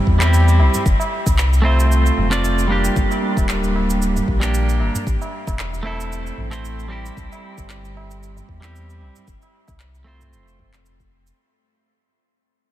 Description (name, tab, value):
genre	organic downtempo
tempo	114 BPM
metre	4/4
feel	swing 55% on 16ths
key	unclear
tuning	A4 = 440 Hz
part	clean electric guitar	accompaniment	0.0-10.7 s	G3 to D5	-22 LUFS	right 2 dB	sidechain pumping, ping-pong delay
part	warm sub bass	bass	0.1-11.3 s	D1 to E2	-18 LUFS	equal	sidechain pumping
part	electronic kick drum	drums	0.1-11.1 s	none	-21 LUFS	equal	none
part	electronic handclaps and cabasa	drums	0.2-11.4 s	none	-28 LUFS	right 1 dB	none
part	tabla	percussion	0.2-10.7 s	none	-30 LUFS	right 1 dB	none
room	light reverb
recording	none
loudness	-16 LUFS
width	side -13 dB against mid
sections	0.0-11.4 A section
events	fade-out 0.0-11.4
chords	0.0 C; 0.9 F; 3.0 Gm; 5.1 Am7; 7.2 C; 9.3 F